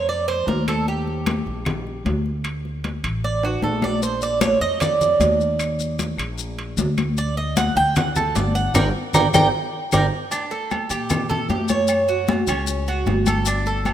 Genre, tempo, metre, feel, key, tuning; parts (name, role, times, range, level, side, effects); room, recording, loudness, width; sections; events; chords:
latin, Cuban son and guajira; 153 BPM; 4/4; straight; G minor; A4 = 440 Hz
Cuban tres; arpeggios; 0.0-13.9 s; C#4 to G5; -21 LUFS; right 3 dB
upright bass; bass; 0.0-13.9 s; G1 to Bb2; -25 LUFS; equal
congas; percussion; 0.1-13.9 s; -24 LUFS; left 3 dB
timbales and agogo bells; percussion; 0.3-13.9 s; -30 LUFS; right 3 dB
claves; percussion; 0.7-13.9 s; -32 LUFS; left 7 dB
maracas; percussion; 4.0-13.9 s; -32 LUFS; left 10 dB
moderate lush hall reverb, RT60 3.0 s; rough home demo mix; -19 LUFS; side -10 dB against mid
0.0-10.3 A section; 10.3-13.9 B section
Cuban tres solo 0.0-10.3; drum fill 3.4-4.0, 9.1-10.3; band accent 8.7-10.3
0.0 Bb5; 0.9 Eb; 2.5 D5; 4.0 Bb; 5.6 Eb5; 7.2 Dadd11; 8.7 Gm; 10.3 Gmadd9; 11.9 F#5